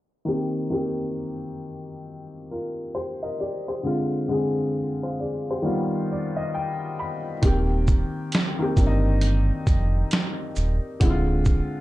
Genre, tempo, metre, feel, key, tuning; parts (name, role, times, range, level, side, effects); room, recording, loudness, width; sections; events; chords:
lo-fi hip hop; 67 BPM; 4/4; swing 62% on 16ths; Eb major; A4 = 439 Hz
dark upright piano; accompaniment; 0.2-11.8 s; D3 to B5; -26 LUFS; left 1 dB; low-pass filter
sub bass with octave; bass; 7.4-11.6 s; D1 to G1; -22 LUFS; equal
boom bap sampler-style drum kit; drums; 7.4-11.7 s; hi-hat, kick drum, shaker, snare drum; -22 LUFS; right 1 dB; vintage 12-bit sampler grit
light reverb; dark, warm production, low-pass filter; -22 LUFS; side -17 dB against mid
0.3-7.4 A section; 7.4-11.8 B section
filter sweep 0.3-7.4; upright piano fill 5.6-7.4
0.3 Eb6; 3.8 Dm7b5; 5.6 G7b13; 7.4 Eb6; 11.0 Dm7b5